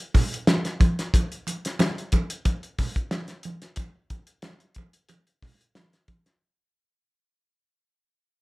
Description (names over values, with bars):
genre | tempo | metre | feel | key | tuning
funk | 91 BPM | 4/4 | straight | none | none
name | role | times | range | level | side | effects
cloth-damped thuddy drum kit | drums | 0.1-6.4 s | hi-hat, kick drum, snare drum | -23 LUFS | equal | none
congas | percussion | 0.1-6.2 s | none | -30 LUFS | right 3 dB | none
room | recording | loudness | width
moderate studio ambience, RT60 0.5 s | none | -23 LUFS | side -22 dB against mid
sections
0.0-6.4 A section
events
fade-out 0.0-6.4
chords
none